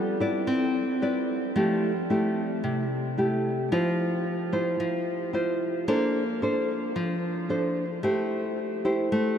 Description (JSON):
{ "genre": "bossa nova", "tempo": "111 BPM", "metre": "4/4", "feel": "straight", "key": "F major", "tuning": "A4 = 436 Hz", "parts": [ { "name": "nylon-string guitar", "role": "solo", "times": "0.0-9.4 s", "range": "C3 to D5", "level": "-24 LUFS", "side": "equal", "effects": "none" } ], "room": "wet huge ambient reverb, RT60 8.7 s", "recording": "in a vast, echoing space", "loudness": "-24 LUFS", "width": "side -8 dB against mid", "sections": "0.0-1.6 A section; 1.6-9.4 A section", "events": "none", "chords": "0.5 Cmaj9; 1.6 Fmaj9; 3.7 Cadd11/F; 5.9 Bbmaj9; 8.0 Am7", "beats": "0.48 1.02 | 1.56 2.10 2.64 3.18 | 3.72 4.26 4.80 5.34 | 5.88 6.42 6.96 7.50 | 8.04 8.58 9.12" }